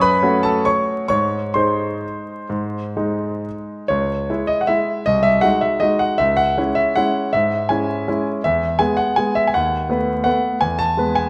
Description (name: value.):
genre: classical, piano waltz.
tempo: 121-174 BPM.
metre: 3/4.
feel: rubato.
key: C# minor.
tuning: A4 = 440 Hz.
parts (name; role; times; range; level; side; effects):
clear concert grand piano; solo; 0.0-11.3 s; B#1 to C#6; -19 LUFS; equal; none.
room: moderate recital hall reverb, RT60 1.6 s.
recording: vinyl crackle.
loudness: -19 LUFS.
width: mono.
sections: 0.0-3.9 A section; 3.9-11.3 B section.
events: none.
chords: 0.0 F#m; 1.1 G#; 3.9 C#m; 5.1 G#7/B#; 6.2 C#m; 8.4 E; 9.5 B7/D#; 10.6 E.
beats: 0.24 0.66 | 1.09 1.55 2.03 | 2.50 2.97 3.45 | 3.90 4.29 4.69 | 5.08 5.45 5.83 | 6.21 6.59 6.97 | 7.33 7.69 8.07 | 8.44 8.79 9.17 | 9.54 9.90 10.27 | 10.62 10.98.